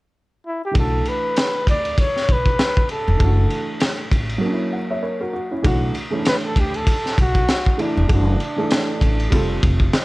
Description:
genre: hip hop, jazz-hop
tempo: 98 BPM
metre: 4/4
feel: swing 58% on 16ths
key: B minor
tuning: A4 = 440 Hz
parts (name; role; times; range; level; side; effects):
- mellow flugelhorn; melody; 0.5-9.6 s; D4 to D5; -24 LUFS; equal; analog delay
- dark upright piano; accompaniment; 0.7-10.0 s; E3 to F#5; -24 LUFS; right 1 dB; none
- crunchy breakbeat drum kit; drums; 0.7-10.0 s; hi-hat, kick drum, ride cymbal, snare drum; -20 LUFS; equal; none
- upright bass; bass; 0.8-9.9 s; E1 to D2; -21 LUFS; equal; none
room: small room ambience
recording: none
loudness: -17 LUFS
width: side -21 dB against mid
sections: 0.8-5.6 A section; 5.6-10.0 B section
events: break 4.4-5.6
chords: 0.0 N.C.; 0.8 Bm7; 3.2 Dadd9/F#; 4.4 F#7; 5.6 Bm11; 8.1 Dadd9/F#; 9.3 Fadd9

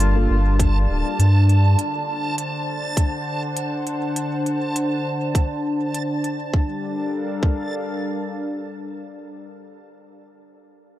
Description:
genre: ambient dub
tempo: 101 BPM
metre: 4/4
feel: swing 54% on 16ths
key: G minor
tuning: A4 = 441 Hz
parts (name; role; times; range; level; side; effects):
- melodica; melody; 0.0-0.6 s; F4; -34 LUFS; left 2 dB; dub echo
- warm analog pad; sustained chords; 0.0-9.7 s; D3 to A5; -26 LUFS; left 1 dB; lush chorus
- warm sub bass; bass; 0.0-1.8 s; D1 to G2; -15 LUFS; equal; tube saturation
- electronic hi-hat; drums; 0.0-6.4 s; none; -30 LUFS; right 2 dB; none
- backwards swelling texture; texture; 0.0-6.5 s; A5; -30 LUFS; right 3 dB; built-in reverb
- electronic kick drum; drums; 0.6-7.6 s; none; -19 LUFS; equal; none
room: light reverb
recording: none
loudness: -19 LUFS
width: side -14 dB against mid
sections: 0.0-6.5 A section; 6.5-8.9 B section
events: none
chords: 0.0 Gm7; 1.8 D7; 6.5 Gm7

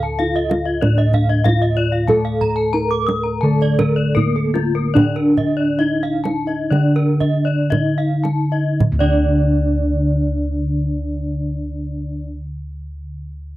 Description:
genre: Balinese gamelan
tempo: 52-95 BPM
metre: 4/4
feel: straight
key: D pelog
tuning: A4 = 439 Hz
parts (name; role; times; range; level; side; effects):
- gamelan-type bronze metallophone; melody; 0.0-12.3 s; Bb3 to Bb4; -22 LUFS; equal; none
- gamelan-type bronze metallophone; arpeggios; 0.0-12.3 s; F4 to Eb6+35c; -25 LUFS; left 5 dB; none
- gamelan-type bronze metallophone; arpeggios; 0.0-12.3 s; A4 to D6; -25 LUFS; right 6 dB; none
- gamelan-type bossed gongs; bass; 0.0-12.2 s; D2 to A4; -19 LUFS; equal; none
- kendang; percussion; 0.2-9.3 s; none; -21 LUFS; right 3 dB; none
- gamelan-type bronze metallophone; accompaniment; 2.1-12.3 s; D3 to A3; -26 LUFS; left 3 dB; none
room: little or no reverb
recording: dry, close 1970s-style studio recording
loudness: -15 LUFS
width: side -16 dB against mid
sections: 0.0-8.8 A section; 8.8-13.4 B section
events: slowing down 2.1-8.8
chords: none

